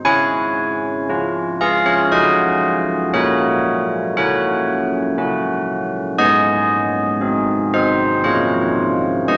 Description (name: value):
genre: classical, tune for church bells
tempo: 58 BPM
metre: 3/4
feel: straight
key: Db major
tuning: A4 = 440 Hz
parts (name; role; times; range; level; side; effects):
- carillon bells; solo; 0.0-9.4 s; Ab3 to Ab5; -17 LUFS; equal; none
room: wet concert hall reverb, RT60 2.3 s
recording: nothing above 7.7 kHz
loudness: -18 LUFS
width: mono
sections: 0.0-9.4 A section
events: none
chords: 0.0 Db; 3.1 Gb/Bb; 6.2 Ab; 8.2 Bbm